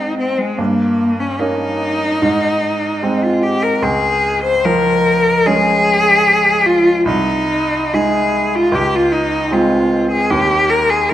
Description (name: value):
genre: classical, romantic duo for cello and grand piano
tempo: 74 BPM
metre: 4/4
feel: rubato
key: Ab major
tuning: A4 = 440 Hz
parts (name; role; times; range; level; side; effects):
- clear cello; melody; 0.0-11.1 s; Ab3 to C5; -14 LUFS; left 1 dB; none
- bright baby grand piano; accompaniment; 0.0-11.1 s; C2 to Eb4; -18 LUFS; right 2 dB; none
room: wet recital hall reverb, RT60 1.3 s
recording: none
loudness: -12 LUFS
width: side -12 dB against mid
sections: 0.0-11.1 A section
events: none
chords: 0.0 Ab; 0.6 Eb7/G; 2.2 Ab; 3.8 Db; 7.1 Ab/C; 8.7 Db5; 10.3 Eb